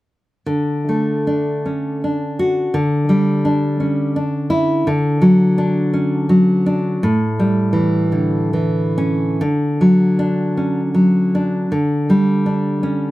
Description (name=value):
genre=romantic piece for solo classical guitar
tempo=64-87 BPM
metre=3/4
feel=rubato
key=D major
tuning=A4 = 439 Hz
part: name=nylon-string guitar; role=solo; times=0.5-13.1 s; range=A2 to F#4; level=-15 LUFS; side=equal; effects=none
room=light reverb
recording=none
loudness=-15 LUFS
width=side -17 dB against mid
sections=0.5-9.4 A section; 9.4-13.1 B section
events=none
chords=0.5 D; 2.7 Em7/D; 4.9 D; 7.0 A7; 9.4 D; 11.7 Em7/D (rootless)